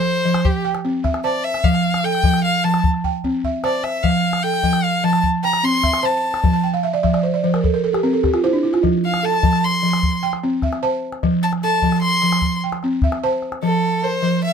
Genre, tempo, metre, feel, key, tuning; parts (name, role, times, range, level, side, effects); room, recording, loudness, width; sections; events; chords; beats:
west african traditional, West African string and xylophone music; 100 BPM (dotted quarters); 12/8; straight; F major; A4 = 442 Hz
rich violin; melody; 0.0-14.5 s; G4 to C6; -20 LUFS; left 2 dB
balafon; arpeggios; 0.0-14.5 s; F3 to A5; -19 LUFS; right 2 dB
calabash; percussion; 0.3-13.6 s; -21 LUFS; left 2 dB
little or no reverb; close, detailed microphones; -16 LUFS; side -7 dB against mid
0.0-13.6 A section
violin solo 0.0-13.6; drum fill 3.0-4.0; balafon fill 6.5-8.8
0.4 C; 1.6 F; 2.8 C; 4.0 F; 5.2 C; 6.4 F; 7.6 N.C.; 8.8 F; 10.0 C; 11.2 F; 12.4 C; 13.6 F
0.45 1.04 | 1.64 2.24 2.84 3.44 | 4.04 4.63 5.24 5.83 | 6.43 7.03 7.63 8.23 | 8.83 9.43 10.03 10.63 | 11.23 11.83 12.43 13.03 | 13.62 14.22